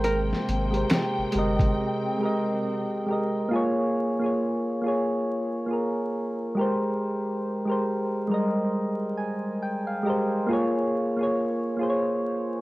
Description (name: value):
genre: lo-fi hip hop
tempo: 69 BPM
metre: 4/4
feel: swing 60% on 16ths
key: Bb dorian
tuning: A4 = 439 Hz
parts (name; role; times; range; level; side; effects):
- archtop guitar, miked and amplified; melody; 0.0-2.6 s; Bb4; -30 LUFS; right 2 dB; low-pass filter
- soft electric-piano-like synth keys; accompaniment; 0.0-12.6 s; G3 to Ab5; -24 LUFS; equal; chorus, cassette tape, low-pass filter
- warm studio string section; sustained chords; 0.0-3.5 s; C3 to G5; -33 LUFS; left 1 dB; low-pass filter
- soft dub sub bass; bass; 0.0-1.8 s; G1 to Ab1; -29 LUFS; equal; none
- dusty soul sampler-style drum kit; drums; 0.0-1.8 s; finger snaps, hi-hat, kick drum, snare drum; -26 LUFS; equal; overdrive
room: moderate spring reverb, RT60 2.6 s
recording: worn, warbling old tape, cassette tape, vinyl crackle, warbly pitch drift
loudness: -24 LUFS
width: side -19 dB against mid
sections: 0.0-3.5 A section; 3.5-12.6 B section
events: break 1.8-3.5; synth keys fill 8.7-10.5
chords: 0.0 Abmaj9; 3.5 Bbm7; 6.6 Abmaj9; 10.5 Bbm7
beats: | 0.04 0.90 1.77 2.64 | 3.51 4.38 5.25 6.12 | 6.99 7.86 8.73 9.60 | 10.47 11.34 12.21